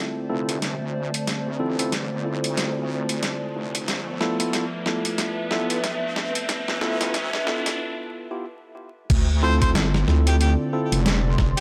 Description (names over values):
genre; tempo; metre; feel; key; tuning
glitch hop; 92 BPM; 4/4; swing 59% on 16ths; D dorian; A4 = 438 Hz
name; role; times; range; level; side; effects
warm analog pad; sustained chords; 0.0-11.6 s; D3 to E5; -34 LUFS; equal; chorus, vintage 12-bit sampler grit, sidechain pumping
tine electric piano; stabs; 0.0-11.0 s; B3 to A4; -31 LUFS; equal; sidechain pumping, low-pass filter, delay
riser; sound effects; 2.0-7.8 s; none; -36 LUFS; equal; none
warbly tape-like pad; texture; 0.0-11.6 s; A4 to C6; -35 LUFS; equal; chorus, built-in reverb, phaser, sidechain pumping
wobble bass; bass; 0.3-11.5 s; F1 to G2; -27 LUFS; equal; chorus, tube saturation, high-pass filter
boom bap sampler-style drum kit; drums; 0.5-11.6 s; crash cymbal, hi-hat, snare drum; -29 LUFS; equal; high-pass filter on hats, studio reverb, high-pass filter on snare, high-pass filter on cymbals
electronic kick drum; drums; 9.1-11.5 s; none; -24 LUFS; equal; studio reverb
warm harmonica; melody; 9.4-11.6 s; G4 to C5; -31 LUFS; equal; delay
room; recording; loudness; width
light reverb; vinyl crackle, high-pass filter; -24 LUFS; mono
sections
0.0-9.1 A section; 9.1-11.6 B section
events
build-up 0.0-9.1; drum fill 0.0-7.8; filter sweep on analog synth pad 0.0-9.1; riser 2.0-7.8; break 7.8-9.1; drop 9.1-11.6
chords
0.0 Dm7; 3.9 G13; 9.1 Dm7